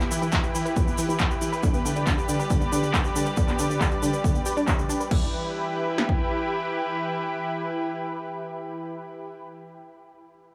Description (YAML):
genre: uplifting trance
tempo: 138 BPM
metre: 4/4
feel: straight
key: E minor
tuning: A4 = 441 Hz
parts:
  - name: lush unison pad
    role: sustained chords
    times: 0.0-9.4 s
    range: E3 to D5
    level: -31 LUFS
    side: equal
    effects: chorus, sidechain pumping
  - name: analog pluck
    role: arpeggios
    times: 0.0-5.3 s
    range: D3 to D5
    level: -31 LUFS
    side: equal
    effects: chorus, sidechain pumping, dub echo
  - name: big-room dance drum kit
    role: drums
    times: 0.0-5.2 s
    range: crash cymbal, handclaps, hi-hat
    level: -34 LUFS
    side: equal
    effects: low-pass filter on hats, low-pass filter on snare, low-pass filter on cymbals, low-pass filter on room
  - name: tube shaker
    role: percussion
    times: 0.0-5.1 s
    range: none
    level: -38 LUFS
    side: equal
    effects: none
  - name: punchy analog drum machine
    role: drums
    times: 0.3-6.2 s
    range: kick drum, snare drum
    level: -28 LUFS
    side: equal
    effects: none
room: light reverb, digital ambience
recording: small room ambience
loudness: -25 LUFS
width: mono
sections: 0.0-5.1 A section; 5.1-8.6 B section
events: filter sweep on drum 0.0-5.1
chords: 0.0 Em; 1.6 G; 5.1 Em